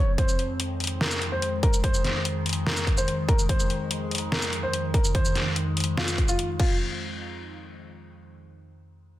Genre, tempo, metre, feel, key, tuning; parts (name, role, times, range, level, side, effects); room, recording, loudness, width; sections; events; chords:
heavy wobble dubstep; 145 BPM; 4/4; half-time; F minor; A4 = 442 Hz
dark grand piano; melody; 0.0-6.8 s; F4 to Db5; -31 LUFS; left 1 dB; tape echo
evolving wavetable pad; sustained chords; 0.0-6.8 s; F2 to C4; -31 LUFS; left 1 dB; chorus, built-in reverb, phaser, sidechain pumping
dubstep drum kit; drums; 0.2-6.7 s; crash cymbal, hi-hat, shaker, snare drum; -29 LUFS; equal
electronic kick drum; drums; 0.2-6.7 s; -23 LUFS; equal
light reverb; dense, heavily limited modern master; -23 LUFS; side -14 dB against mid
0.0-6.8 A section; 6.8-8.5 B section
0.0 F5; 6.8 N.C.